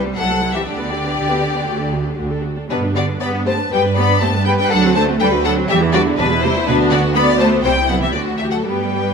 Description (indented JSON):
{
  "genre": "quick classical-period movement for string orchestra",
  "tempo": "120 BPM",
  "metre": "4/4",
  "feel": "rubato",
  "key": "G major",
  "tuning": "A4 = 440 Hz",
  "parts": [
    { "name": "rich symphonic viola section", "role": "accompaniment", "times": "0.0-9.1 s", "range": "G3 to B4", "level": "-21 LUFS", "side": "right 1 dB", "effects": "none" },
    { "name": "rich symphonic cello section", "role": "bass", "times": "0.0-9.1 s", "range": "B2 to B3", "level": "-21 LUFS", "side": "right 4 dB", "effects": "none" },
    { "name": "rich symphonic double bass section", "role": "bass", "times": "0.0-9.1 s", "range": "C2 to G2", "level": "-22 LUFS", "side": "right 3 dB", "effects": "none" },
    { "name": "rich symphonic violin section", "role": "melody", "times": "0.2-9.1 s", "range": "B4 to B5", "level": "-21 LUFS", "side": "left 6 dB", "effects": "none" },
    { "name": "warm symphonic violin section", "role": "second line", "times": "0.2-9.1 s", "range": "D4 to D5", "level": "-21 LUFS", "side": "left 3 dB", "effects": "none" }
  ],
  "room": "moderate concert hall reverb, RT60 2.2 s",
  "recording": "none",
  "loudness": "-14 LUFS",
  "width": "side -6 dB against mid",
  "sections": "0.0-9.1 A section",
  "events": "none",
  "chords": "0.0 C; 0.7 G/D; 1.7 D; 2.7 G; 4.7 D7; 5.7 Em; 6.7 Bm/D; 7.6 C; 8.1 D"
}